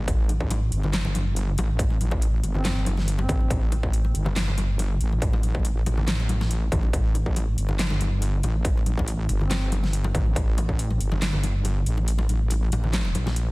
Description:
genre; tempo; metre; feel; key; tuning
deep dubstep; 140 BPM; 4/4; swing 53% on 16ths, half-time; A phrygian; A4 = 438 Hz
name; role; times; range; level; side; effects
wobble bass; bass; 0.0-13.5 s; G1 to Bb1; -24 LUFS; equal; chorus
dubstep drum kit; drums; 0.1-13.5 s; handclaps, hi-hat, snare drum; -30 LUFS; equal; studio reverb
electronic kick drum; drums; 0.1-10.8 s; none; -24 LUFS; equal; distortion, studio reverb
congas; percussion; 0.3-13.3 s; none; -32 LUFS; left 2 dB; none
mellow duduk; melody; 2.5-3.6, 9.4-9.7 s; C4; -37 LUFS; equal; dub echo
room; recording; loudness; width
studio reverb; dense, heavily limited modern master, vinyl crackle; -22 LUFS; side -23 dB against mid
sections
0.0-13.5 A section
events
kick drops out 12.1-13.5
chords
none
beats
| 0.08 0.51 0.93 1.36 | 1.79 2.22 2.65 3.08 | 3.50 3.93 4.36 4.79 | 5.22 5.65 6.08 6.50 | 6.93 7.36 7.79 8.22 | 8.65 9.08 9.51 9.93 | 10.36 10.79 11.22 11.65 | 12.08 12.51 12.93 13.36

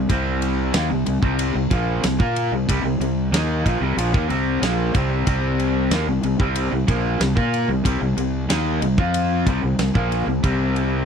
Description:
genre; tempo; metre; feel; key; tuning
classic rock; 93 BPM; 4/4; straight; C minor; A4 = 442 Hz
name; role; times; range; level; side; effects
raw garage guitar; riff; 0.0-11.1 s; Bb2 to Bb4; -21 LUFS; left 1 dB; overdrive
fuzz fingered electric bass; bass; 0.0-11.0 s; Bb1 to Bb2; -23 LUFS; right 1 dB; overdrive
big rock drum kit; drums; 0.1-10.9 s; kick drum, ride cymbal, snare drum; -25 LUFS; right 1 dB; none
room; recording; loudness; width
little or no reverb; dry, close 1970s-style studio recording; -18 LUFS; side -7 dB against mid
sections
0.0-11.1 A section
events
none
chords
0.0 Cm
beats
| 0.10 0.75 1.39 2.04 | 2.69 3.33 3.98 4.62 | 5.27 5.92 6.56 7.21 | 7.85 8.50 9.14 9.79 | 10.44

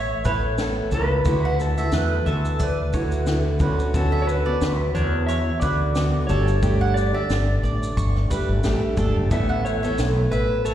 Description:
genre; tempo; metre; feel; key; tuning
acoustic pop; 89 BPM; 4/4; swing 55% on 16ths; A mixolydian; A4 = 439 Hz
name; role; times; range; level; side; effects
clean lap steel guitar; melody; 0.0-10.7 s; A4 to E5; -27 LUFS; equal; slapback echo
fingerpicked plugged-in steel-string acoustic guitar; accompaniment; 0.0-10.7 s; A2 to A4; -26 LUFS; right 1 dB; slapback echo
mandolin; arpeggios; 0.0-10.7 s; D4 to C#6; -32 LUFS; right 6 dB; slapback echo
mellow fretless electric bass; bass; 0.0-10.7 s; F#1 to E2; -22 LUFS; equal; none
compact cocktail drum kit; drums; 0.2-10.7 s; kick drum, shaker, snare drum; -28 LUFS; equal; none
room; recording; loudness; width
light reverb, small room ambience; live gig heard through the venue's PA, recital hall reverb; -19 LUFS; side -11 dB against mid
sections
0.0-10.7 A section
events
none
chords
0.0 Asus2; 1.3 Dadd9; 3.6 Bmadd9/D; 6.3 Gsus2; 9.3 Asus2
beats
0.59 | 1.26 1.93 2.60 3.27 | 3.94 4.61 5.28 5.95 | 6.63 7.30 7.97 8.64 | 9.31 9.99 10.66

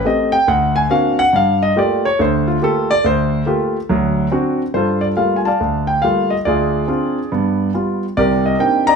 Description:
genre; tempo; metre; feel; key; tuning
solo jazz; 140 BPM; 4/4; swing 65% on 8ths; G minor; A4 = 440 Hz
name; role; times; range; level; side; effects
warm concert grand piano; solo; 0.0-9.0 s; C2 to Bb5; -14 LUFS; equal; none
room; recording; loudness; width
moderate large studio reverb, RT60 1.1 s; band playing live in one room; -14 LUFS; side -5 dB against mid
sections
0.0-4.7 A section; 4.7-9.0 B section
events
grand piano solo 0.0-4.7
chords
0.5 Daug7; 1.3 Gm9; 3.9 D7; 4.7 Gm9; 6.5 Dm7b5; 7.3 G7; 8.2 Cm9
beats
0.05 0.48 0.90 | 1.33 1.76 2.19 2.61 | 3.04 3.47 3.89 4.32 | 4.75 5.17 5.60 6.03 | 6.46 6.89 7.32 7.74 | 8.17 8.60

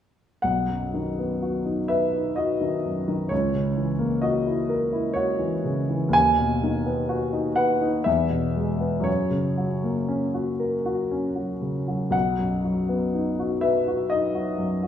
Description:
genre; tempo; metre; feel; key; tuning
classical, romantic nocturne for solo piano; 58-66 BPM; 3/4; rubato; B major; A4 = 440 Hz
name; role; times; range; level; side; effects
warm grand piano; solo; 0.4-14.9 s; B1 to G#5; -22 LUFS; left 1 dB; none
room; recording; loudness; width
moderate scoring stage reverb, RT60 1.9 s; studio ambience; -22 LUFS; side -9 dB against mid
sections
0.4-14.9 A section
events
none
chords
0.4 B; 3.3 F#7/C#; 6.1 B/D#; 8.1 E; 9.1 F#; 12.1 B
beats
| 0.44 1.42 2.37 | 3.31 4.23 5.15 | 6.15 7.10 8.06 | 9.07 10.10 11.11 | 12.14 13.14 14.12

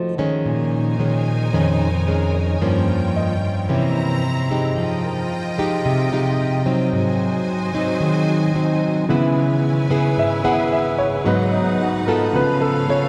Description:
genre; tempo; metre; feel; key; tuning
bossa nova; 111 BPM; 4/4; straight; C# minor from 9.1 s; A4 = 440 Hz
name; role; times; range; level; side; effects
nylon-string guitar; accompaniment; 0.0-13.1 s; F2 to A4; -20 LUFS; equal; none
clear studio string section; sustained chords; 0.5-13.1 s; C#4 to Bb5; -31 LUFS; equal; none
warm concert grand piano; accompaniment; 2.3-13.1 s; G#2 to F#5; -25 LUFS; equal; none
room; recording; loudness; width
wet cathedral reverb, RT60 5.5 s; recorded in a church or concert hall; -19 LUFS; mono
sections
0.0-9.1 A section; 9.1-13.1 B section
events
grand piano solo 9.1-13.1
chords
0.5 Bbm11; 2.6 Gm7b5; 3.7 C7b9; 4.8 Fm9; 6.9 Ab7; 9.1 C#m7; 11.3 G#m7; 12.3 C#aug7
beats
| 0.46 1.00 1.54 2.08 | 2.61 3.15 3.69 4.23 | 4.77 5.31 5.85 6.39 | 6.93 7.47 8.01 8.55 | 9.09 9.63 10.17 10.71 | 11.26 11.80 12.34 12.88

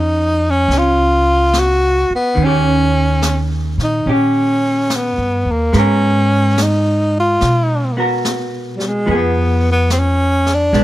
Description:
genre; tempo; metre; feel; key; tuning
jazz ballad; 72 BPM; 4/4; swing 68% on 8ths; unclear; A4 = 436 Hz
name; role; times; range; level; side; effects
breathy tenor saxophone; melody; 0.0-10.8 s; G3 to Gb4; -15 LUFS; equal; none
vintage hollow-body jazz guitar; accompaniment; 0.0-10.8 s; Eb3 to Bb4; -19 LUFS; right 2 dB; none
upright bass; bass; 0.0-10.8 s; Bb1 to Cb3; -18 LUFS; equal; none
jazz brush drum kit; drums; 0.7-10.8 s; brushed snare drum, hi-hat, snare drum; -26 LUFS; left 2 dB; none
room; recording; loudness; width
little or no reverb; close, detailed microphones; -13 LUFS; side -14 dB against mid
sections
0.0-10.8 A section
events
none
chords
0.0 Gb5; 2.4 Eb7; 5.7 Abm9; 9.1 Fdim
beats
0.71 1.55 | 2.38 3.22 4.06 4.90 | 5.74 6.57 7.41 8.24 | 9.07 9.91 10.74

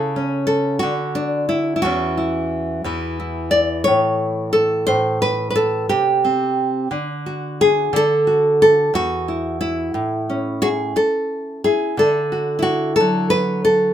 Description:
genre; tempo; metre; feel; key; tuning
folk, solo fingerstyle acoustic guitar; 59 BPM (dotted quarters); 6/8; straight; unclear; A4 = 441 Hz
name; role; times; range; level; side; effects
nylon-string guitar; solo; 0.0-13.9 s; E2 to D5; -16 LUFS; equal; none
room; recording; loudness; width
light reverb; minimal, uncompressed stereo recording; -17 LUFS; side -10 dB against mid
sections
0.0-12.0 A section; 12.0-13.9 B section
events
none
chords
0.0 N.C.; 1.8 C#madd11/E; 2.9 N.C.; 3.9 A; 5.9 N.C.; 6.9 D; 8.9 N.C.; 9.9 A; 12.0 D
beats
0.82 | 1.83 2.85 | 3.87 4.88 | 5.90 6.91 | 7.92 8.93 | 9.94 10.96 | 11.98 13.00

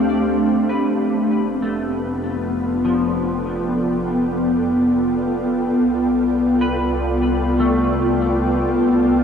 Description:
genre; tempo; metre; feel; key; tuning
ambient; 74 BPM; 3/4; straight; unclear; A4 = 440 Hz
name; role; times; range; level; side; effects
ethereal airy pad; sustained chords; 0.0-9.2 s; A3 to G5; -17 LUFS; equal; ensemble chorus, built-in reverb
semi-hollow electric guitar; arpeggios; 0.0-9.2 s; F3 to D5; -28 LUFS; left 1 dB; ensemble chorus, ping-pong delay
bright studio double bass section; bass; 0.0-9.2 s; F1 to D2; -28 LUFS; equal; none
room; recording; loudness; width
wet huge ambient reverb, RT60 8.3 s; dark, warm production; -17 LUFS; side -7 dB against mid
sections
0.0-9.2 A section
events
fade-in on clean electric guitar 0.0-9.2; fade-in on double bass section 0.0-9.2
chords
0.0 Dm7; 0.9 Fadd9; 5.8 C5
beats
0.10 | 0.91 1.72 2.53 | 3.34 4.15 4.96 | 5.77 6.58 7.39 | 8.20 9.01

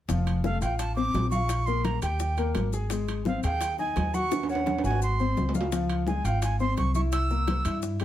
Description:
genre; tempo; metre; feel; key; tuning
Afro-Cuban jazz; 171 BPM; 4/4; straight; unclear; A4 = 440 Hz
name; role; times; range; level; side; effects
warm baby grand piano; accompaniment; 0.1-8.0 s; F3 to Ab5; -31 LUFS; left 4 dB; none
upright bass; bass; 0.1-8.0 s; F1 to G2; -28 LUFS; equal; none
bongos; percussion; 0.1-8.0 s; none; -37 LUFS; left 7 dB; none
congas; percussion; 0.1-8.0 s; none; -35 LUFS; equal; none
maracas; percussion; 0.1-8.0 s; none; -45 LUFS; left 7 dB; none
timbales; percussion; 0.1-8.0 s; none; -35 LUFS; right 5 dB; none
breathy bright jazz flute; melody; 0.4-7.8 s; F5 to E6; -30 LUFS; right 2 dB; none
room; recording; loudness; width
light reverb; none; -24 LUFS; side -12 dB against mid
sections
0.1-8.0 A section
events
drum fill 4.3-5.7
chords
0.1 F6; 1.5 Bb5; 2.2 Eb; 2.9 Ab6; 4.3 Ebm7; 5.0 Ab7; 5.7 Dbmaj7; 7.1 C7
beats
| 0.09 0.44 0.80 1.15 | 1.50 1.85 2.20 2.56 | 2.91 3.26 3.61 3.96 | 4.31 4.67 5.02 5.37 | 5.72 6.07 6.42 6.77 | 7.12 7.48 7.83

